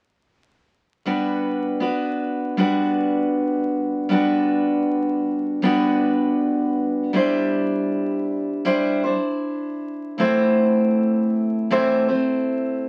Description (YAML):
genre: pop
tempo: 79 BPM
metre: 4/4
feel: straight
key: G major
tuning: A4 = 441 Hz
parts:
  - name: picked steel-string acoustic guitar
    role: accompaniment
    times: 1.1-12.9 s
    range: A2 to C5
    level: -21 LUFS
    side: equal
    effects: none
room: wet studio ambience, RT60 0.5 s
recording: very old 78 rpm record, vinyl crackle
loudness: -21 LUFS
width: mono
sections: 1.0-12.9 A section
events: none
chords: 1.0 Gmaj7; 7.1 Cadd9/G; 10.2 Am